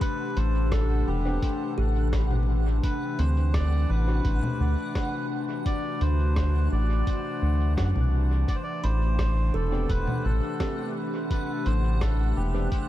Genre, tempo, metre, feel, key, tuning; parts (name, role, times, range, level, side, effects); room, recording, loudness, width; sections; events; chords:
ambient dub; 85 BPM; 4/4; straight; A dorian; A4 = 441 Hz
melodica; melody; 0.0-12.9 s; G4 to D5; -35 LUFS; right 1 dB; dub echo
warbly tape-like pad; sustained chords; 0.0-12.9 s; C3 to G4; -32 LUFS; left 2 dB; chorus, built-in reverb
kalimba; arpeggios; 0.0-12.9 s; C4 to B5; -38 LUFS; right 4 dB; dub echo
electronic kick drum; drums; 0.0-12.9 s; -28 LUFS; equal
lo-fi sampler-style drum kit; drums; 0.0-12.9 s; congas, hi-hat, rim click; -37 LUFS; left 1 dB; dub echo
backwards swelling texture; texture; 0.0-12.9 s; F#5; -42 LUFS; right 1 dB; built-in reverb, analog chorus
round analog bass; bass; 0.4-12.7 s; E1 to F#2; -23 LUFS; equal
barky tine electric piano; stabs; 1.2-4.2, 9.7-12.7 s; B3 to G4; -41 LUFS; left 1 dB
light reverb; vinyl crackle; -23 LUFS; side -14 dB against mid
0.0-12.9 A section
0.0 Am11; 2.8 D9; 8.5 Am11